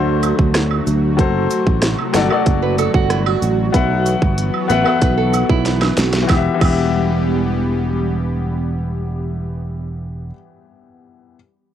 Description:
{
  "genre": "dancehall",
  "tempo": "94 BPM",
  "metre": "4/4",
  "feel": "straight",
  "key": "E minor",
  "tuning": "A4 = 444 Hz",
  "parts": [
    { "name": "clear baby grand piano", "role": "accompaniment", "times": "0.0-11.4 s", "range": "D3 to F#5", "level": "-20 LUFS", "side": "left 8 dB", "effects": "sidechain pumping" },
    { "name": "airy breathy pad", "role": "sustained chords", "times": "0.0-9.6 s", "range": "C3 to G4", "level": "-22 LUFS", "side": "right 1 dB", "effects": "chorus, sidechain pumping" },
    { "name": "sustaining fretless electric bass", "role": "bass", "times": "0.0-10.3 s", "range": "E1 to D2", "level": "-19 LUFS", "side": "right 1 dB", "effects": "none" },
    { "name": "island pop drum kit", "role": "drums", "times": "0.2-6.8 s", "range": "crash cymbal, hi-hat, kick drum, rim click, snare drum", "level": "-18 LUFS", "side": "right 1 dB", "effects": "overdrive" },
    { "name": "cabasa and woodblock", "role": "percussion", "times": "0.2-6.8 s", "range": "none", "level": "-26 LUFS", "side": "right 12 dB", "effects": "none" },
    { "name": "nylon-string guitar", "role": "arpeggios", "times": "2.6-6.3 s", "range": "E4 to B4", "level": "-23 LUFS", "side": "right 13 dB", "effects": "tape echo" }
  ],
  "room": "light reverb",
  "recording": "home recording on cassette",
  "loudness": "-14 LUFS",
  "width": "side -10 dB against mid",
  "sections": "0.0-6.3 A section; 6.3-8.8 B section",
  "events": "drum fill 5.7-6.3",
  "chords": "0.0 D; 1.2 F#dim; 3.7 Bsus4; 6.3 Em",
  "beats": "0.55 | 1.19 1.83 2.46 3.10 | 3.74 4.38 5.02 5.66 | 6.29 6.93 7.57 8.21"
}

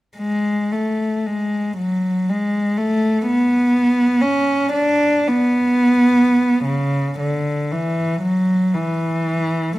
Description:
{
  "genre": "classical, free, expressive piece for unaccompanied cello",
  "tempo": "37-66 BPM",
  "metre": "3/4",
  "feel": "rubato",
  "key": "unclear",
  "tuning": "A4 = 440 Hz",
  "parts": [
    { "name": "warm cello", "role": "solo", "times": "0.2-9.8 s", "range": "C#3 to D4", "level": "-16 LUFS", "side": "equal", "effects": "none" }
  ],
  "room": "light reverb",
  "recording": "close, detailed microphones",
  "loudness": "-16 LUFS",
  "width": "side -17 dB against mid",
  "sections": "0.2-6.7 A section; 6.7-9.8 B section",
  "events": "none",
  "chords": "none",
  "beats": "| 0.18 1.27 2.31 | 3.27 4.24 5.31 | 6.66 7.72 8.74"
}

